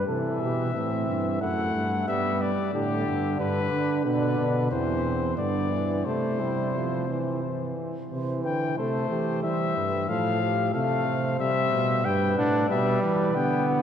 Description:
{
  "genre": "classical, imitative canzona for brass ensemble",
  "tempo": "91 BPM",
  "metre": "3/4",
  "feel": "straight",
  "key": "G major, C major from 4.0 s",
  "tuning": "A4 = 440 Hz",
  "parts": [
    { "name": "dark flugelhorn", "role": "second line", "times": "0.0-13.8 s", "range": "B3 to C5", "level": "-31 LUFS", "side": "right 2 dB", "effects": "none" },
    { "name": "warm bass trombone", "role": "bass", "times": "0.0-13.8 s", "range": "E2 to E3", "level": "-29 LUFS", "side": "right 1 dB", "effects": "none" },
    { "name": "mellow trumpet", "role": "melody", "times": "0.1-13.8 s", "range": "G4 to G5", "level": "-29 LUFS", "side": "left 6 dB", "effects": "none" },
    { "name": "bright trombone", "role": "accompaniment", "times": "0.1-13.8 s", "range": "D3 to D4", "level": "-29 LUFS", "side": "right 2 dB", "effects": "none" }
  ],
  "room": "wet cathedral reverb, RT60 5.1 s",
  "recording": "dark, warm production",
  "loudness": "-24 LUFS",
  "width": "side -8 dB against mid",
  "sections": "0.1-8.1 A section; 8.1-13.8 B section",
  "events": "none",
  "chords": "0.1 C; 1.4 F#m7; 2.1 G; 4.0 Bm; 4.7 C/E; 5.4 G; 6.1 C; 9.4 C/E; 10.1 F/A; 11.4 C; 12.0 G",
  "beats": "| 0.07 0.74 1.41 | 2.08 2.74 3.39 | 4.05 4.71 5.37 | 6.05 6.75 7.43 | 8.11 8.78 9.44 | 10.09 10.74 11.39 | 12.04 12.69 13.35"
}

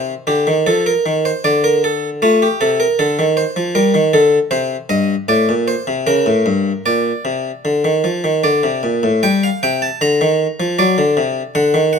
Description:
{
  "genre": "classical, baroque-style two-part invention for harpsichord",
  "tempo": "78 BPM",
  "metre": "3/4",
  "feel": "straight",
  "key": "C minor, G minor from 4.5 s",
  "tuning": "A4 = 441 Hz",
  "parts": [
    { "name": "harpsichord", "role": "solo", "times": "0.0-12.0 s", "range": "G2 to Bb5", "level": "-13 LUFS", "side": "equal", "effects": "none" }
  ],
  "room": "light reverb",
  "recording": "close, detailed microphones",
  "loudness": "-13 LUFS",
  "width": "side -6 dB against mid",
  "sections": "0.0-9.2 A section; 9.2-12.0 B section",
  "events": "none",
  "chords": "0.0 Cm; 1.4 Bb/D; 2.2 Adim; 3.7 Gm; 4.5 Adim; 6.1 Gdim; 6.8 Bbadd9; 8.4 D5; 9.2 Gm; 10.8 D",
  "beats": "0.67 1.44 | 2.22 2.98 3.75 | 4.51 5.28 6.06 | 6.85 7.65 8.44 | 9.24 10.02 10.79 | 11.56"
}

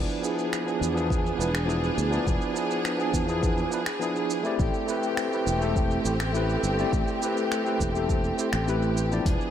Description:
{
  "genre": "sunset chillout",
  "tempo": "103 BPM",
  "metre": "4/4",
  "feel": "straight",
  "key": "A minor",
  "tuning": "A4 = 440 Hz",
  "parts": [
    { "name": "overdriven tine electric piano", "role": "accompaniment", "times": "0.0-9.5 s", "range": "F3 to D5", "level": "-28 LUFS", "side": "equal", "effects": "auto-pan, ping-pong delay" },
    { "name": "rich symphonic string section", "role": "sustained chords", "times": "0.0-9.5 s", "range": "A3 to G#4", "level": "-30 LUFS", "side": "equal", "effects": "none" },
    { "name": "sustaining fretless electric bass", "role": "bass", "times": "0.0-9.4 s", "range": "E1 to E2", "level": "-28 LUFS", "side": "equal", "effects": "none" },
    { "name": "deep house drum kit", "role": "drums", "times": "0.1-9.5 s", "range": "finger snaps, hi-hat, shaker", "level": "-35 LUFS", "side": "right 2 dB", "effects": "none" },
    { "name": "electronic kick drum", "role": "drums", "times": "1.1-9.4 s", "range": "none", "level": "-28 LUFS", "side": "equal", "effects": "none" }
  ],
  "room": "light reverb, digital ambience",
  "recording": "none",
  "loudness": "-24 LUFS",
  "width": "side -10 dB against mid",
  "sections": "0.0-9.5 A section",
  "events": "none",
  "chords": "0.0 E7b9; 4.6 Am7",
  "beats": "0.52 1.10 1.69 | 2.27 2.85 3.44 4.02 | 4.60 5.18 5.76 6.35 | 6.93 7.51 8.10 8.68 | 9.26"
}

